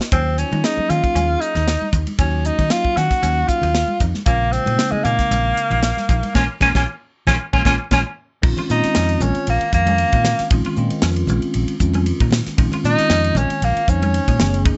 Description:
electric jazz fusion; 116 BPM; 4/4; swing 54% on 16ths; Bb minor; A4 = 440 Hz
bell-like tine electric piano; accompaniment; 0.0-14.8 s; Db3 to Eb5; -27 LUFS; equal; phaser
semi-hollow electric guitar; stabs; 0.0-14.8 s; Bb3 to F4; -30 LUFS; equal; analog chorus
tight funk drum kit; drums; 0.0-14.8 s; crash cymbal, hi-hat, kick drum, ride cymbal, snare drum; -23 LUFS; equal
clear tenor saxophone; melody; 0.1-14.7 s; Ab3 to Gb4; -22 LUFS; equal; slapback echo
fingered electric bass; bass; 0.1-14.7 s; Gb1 to Eb3; -23 LUFS; equal
congas; percussion; 0.5-14.5 s; -29 LUFS; equal
little or no reverb; nothing above 8.0 kHz; -18 LUFS; mono
0.0-8.4 A section; 8.4-14.8 B section
band accent 6.4-8.4; tenor saxophone solo 8.4-14.8
0.1 Ebm9; 4.3 Bbm11
| 0.12 0.64 1.16 1.68 | 2.19 2.71 3.23 3.75 | 4.27 4.79 5.32 5.83 | 6.36 6.88 7.40 7.92 | 8.44 8.96 9.48 9.99 | 10.52 11.03 11.55 12.07 | 12.59 13.11 13.62 14.14 | 14.66

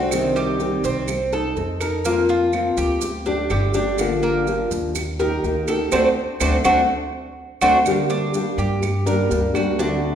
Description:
latin, Cuban son and guajira; 124 BPM; 4/4; straight; A4 = 440 Hz
nylon-string guitar; accompaniment; 0.0-10.2 s; C3 to A4; -22 LUFS; left 2 dB
Cuban tres; arpeggios; 0.0-10.2 s; G3 to Bb4; -22 LUFS; right 2 dB
upright bass; bass; 0.0-10.2 s; G1 to G2; -26 LUFS; equal
claves; percussion; 0.1-9.8 s; -33 LUFS; right 6 dB
maracas; percussion; 0.1-10.0 s; -35 LUFS; right 7 dB
wet recital hall reverb, RT60 1.6 s; recorded in a church or concert hall; -18 LUFS; side -8 dB against mid
0.0-7.9 A section; 7.9-10.2 B section
band accent 5.9-7.9
0.1 Cm; 1.1 Adim/C; 2.1 Fsus4; 3.0 Dsus4; 4.0 Gm7; 5.0 Eb; 5.9 D7; 7.9 Gm
| 0.12 0.60 1.08 1.57 | 2.05 2.54 3.02 3.50 | 3.99 4.47 4.95 5.44 | 5.92 6.41 6.89 7.37 | 7.86 8.34 8.82 9.31 | 9.79

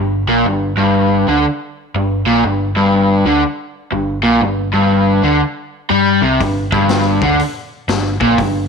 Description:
blues rock power trio and southern rock; 121 BPM; 4/4; swing 64% on 8ths; A4 = 440 Hz
raw garage guitar; riff; 0.0-8.6 s; G2 to G3; -13 LUFS; left 1 dB; overdrive
overdriven picked electric bass; bass; 0.0-8.7 s; G1 to G2; -20 LUFS; right 1 dB
vintage drum kit; drums; 6.4-8.5 s; hi-hat, kick drum, snare drum; -21 LUFS; left 5 dB
light reverb, studio reverb; 1960s-style stereo; -12 LUFS; side -5 dB against mid
0.0-8.7 A section
0.0 G5
| 0.46 0.95 1.45 1.95 | 2.44 2.94 3.43 3.93 | 4.42 4.92 5.42 5.91 | 6.41 6.90 7.40 7.89 | 8.39

